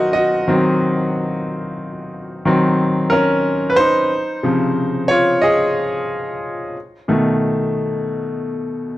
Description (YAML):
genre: soul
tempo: 91 BPM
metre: 4/4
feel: swing 58% on 16ths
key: Eb dorian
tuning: A4 = 440 Hz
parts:
  - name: bright grand piano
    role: solo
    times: 0.0-9.0 s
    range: B2 to Gb5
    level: -16 LUFS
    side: equal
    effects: none
room: small room ambience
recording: dry, close 1970s-style studio recording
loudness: -15 LUFS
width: side -16 dB against mid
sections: 0.0-9.0 A section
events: grand piano solo 0.0-9.0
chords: 0.0 Ebm6; 4.1 Dbmaj9; 6.8 B7